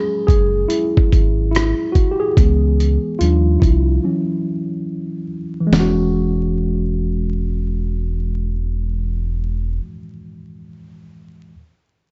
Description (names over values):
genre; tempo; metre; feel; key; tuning
lo-fi hip hop; 72 BPM; 4/4; swing 64% on 16ths; E mixolydian; A4 = 440 Hz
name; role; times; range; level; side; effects
mellow tine electric piano; accompaniment; 0.0-11.6 s; E3 to G#4; -23 LUFS; equal; cassette tape, low-pass filter
sub bass with octave; bass; 0.3-9.8 s; E1 to D#2; -21 LUFS; equal; none
dusty soul sampler-style drum kit; drums; 0.3-6.0 s; hi-hat, kick drum, rim click, snare drum; -17 LUFS; equal; vintage 12-bit sampler grit
room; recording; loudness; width
little or no reverb; vinyl crackle, nothing above 7.7 kHz; -18 LUFS; mono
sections
0.0-5.7 A section; 5.7-9.0 B section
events
tine electric piano solo 0.0-5.7; break 4.0-5.7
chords
0.0 E69; 2.4 C#m7; 3.2 D#maj9; 4.0 C#madd11/E; 5.7 E69